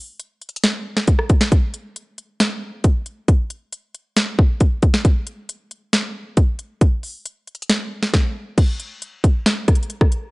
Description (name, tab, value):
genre	hip hop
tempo	136 BPM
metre	4/4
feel	half-time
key	none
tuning	none
part	trap drum kit	drums	0.2-10.2 s	crash cymbal, hi-hat, kick drum, rim click, snare drum	-16 LUFS	equal	none
room	little or no reverb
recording	dry, gritty hardware recording, nothing above 10.9 kHz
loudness	-17 LUFS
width	side -25 dB against mid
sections	0.0-8.6 A section; 8.6-10.3 B section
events	none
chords	none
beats	0.20 0.64 1.08 | 1.52 1.96 2.40 2.84 | 3.28 3.72 4.17 4.61 | 5.05 5.49 5.93 6.37 | 6.81 7.25 7.70 8.14 | 8.58 9.02 9.46 9.90